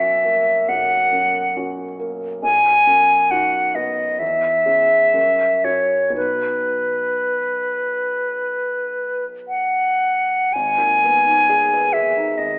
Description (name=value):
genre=classical, romantic duo for flute and grand piano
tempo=50-70 BPM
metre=4/4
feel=rubato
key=B major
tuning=A4 = 440 Hz
part: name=bright silver concert flute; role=melody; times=0.0-12.6 s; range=B4 to G#5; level=-15 LUFS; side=equal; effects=none
part: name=warm grand piano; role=accompaniment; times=0.0-12.6 s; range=G#1 to B4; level=-28 LUFS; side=right 1 dB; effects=none
room=wet recital hall reverb, RT60 1.4 s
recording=telephone sound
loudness=-15 LUFS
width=side -27 dB against mid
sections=0.0-10.5 A section; 10.5-12.6 B section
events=none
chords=0.0 F#7/B; 2.4 B; 4.2 C#m/E; 5.2 F#5; 6.2 B; 10.5 G#m